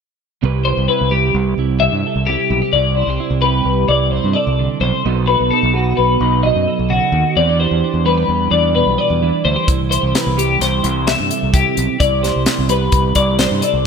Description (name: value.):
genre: math rock and midwest emo.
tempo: 130 BPM.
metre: 5/4.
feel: straight.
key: C major.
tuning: A4 = 440 Hz.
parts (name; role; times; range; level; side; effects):
twelve-string electric guitar; accompaniment; 0.4-13.9 s; B2 to B4; -20 LUFS; right 11 dB; analog chorus.
growling fingered electric bass; bass; 0.4-13.9 s; B1 to G2; -18 LUFS; equal; overdrive.
twelve-string electric guitar; arpeggios; 0.7-13.9 s; F#4 to E5; -16 LUFS; left 5 dB; analog chorus.
crisp fusion drum kit; drums; 9.7-13.7 s; hi-hat, kick drum, snare drum; -18 LUFS; left 1 dB; none.
room: moderate lush hall reverb, RT60 2.0 s.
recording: bright 1980s-style digital production.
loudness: -13 LUFS.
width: side -6 dB against mid.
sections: 0.4-13.9 A section.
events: none.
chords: 0.4 Cmaj9; 5.0 B7; 7.4 Em7; 9.7 Cmaj9.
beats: | 0.42 0.88 1.34 1.81 2.27 | 2.73 3.20 3.66 4.12 4.58 | 5.05 5.51 5.97 6.44 6.90 | 7.36 7.83 8.29 8.75 9.22 | 9.68 10.14 10.61 11.07 11.54 | 12.00 12.46 12.93 13.39 13.85.